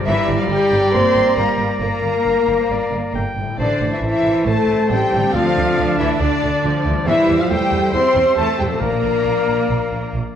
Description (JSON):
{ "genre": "cinematic", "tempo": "137 BPM", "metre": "4/4", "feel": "straight", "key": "unclear", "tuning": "A4 = 441 Hz", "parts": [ { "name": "bright clarinet", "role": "second line", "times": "0.0-10.4 s", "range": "Bb4 to G5", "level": "-26 LUFS", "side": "left 1 dB", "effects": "none" }, { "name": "warm oboe", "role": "second line", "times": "0.0-10.4 s", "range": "E5 to Bb5", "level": "-28 LUFS", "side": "right 2 dB", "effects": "none" }, { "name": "clear symphonic viola section", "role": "accompaniment", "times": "0.0-10.4 s", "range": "F3 to D4", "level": "-26 LUFS", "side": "right 2 dB", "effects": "none" }, { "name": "concert harp", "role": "arpeggios", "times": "0.0-10.4 s", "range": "G2 to C5", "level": "-29 LUFS", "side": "left 8 dB", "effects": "none" }, { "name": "warm studio violin section", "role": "melody", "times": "0.1-10.1 s", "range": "D5 to C6", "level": "-30 LUFS", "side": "left 2 dB", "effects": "none" }, { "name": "dark symphonic violin section", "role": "second line", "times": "0.1-10.1 s", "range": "D5 to C6", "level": "-28 LUFS", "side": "left 2 dB", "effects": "none" }, { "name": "mellow concert flute", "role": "second line", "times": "0.1-10.1 s", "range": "D5 to C6", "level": "-27 LUFS", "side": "left 1 dB", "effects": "none" }, { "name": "warm French horn section", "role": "sustained chords", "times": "0.1-10.1 s", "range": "D4 to C5", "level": "-19 LUFS", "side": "left 2 dB", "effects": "none" }, { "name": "clear symphonic double bass section", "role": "bass", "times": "0.1-10.2 s", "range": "G1 to E2", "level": "-23 LUFS", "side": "right 3 dB", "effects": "none" }, { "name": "rich symphonic cello section", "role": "bass", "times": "0.1-10.2 s", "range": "D3 to C4", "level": "-24 LUFS", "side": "right 1 dB", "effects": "none" }, { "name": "timpani", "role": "percussion", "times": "8.8-9.4 s", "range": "Bb2", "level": "-30 LUFS", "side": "left 2 dB", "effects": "none" } ], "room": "wet scoring stage reverb, RT60 1.5 s", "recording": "worn, warbling old tape, cassette tape, warbly pitch drift, faint mains hum", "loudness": "-15 LUFS", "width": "side -9 dB against mid", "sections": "0.0-10.4 A section", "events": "none", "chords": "0.1 Gm; 3.6 Am; 5.3 Dm; 7.1 C/E; 8.8 Bb" }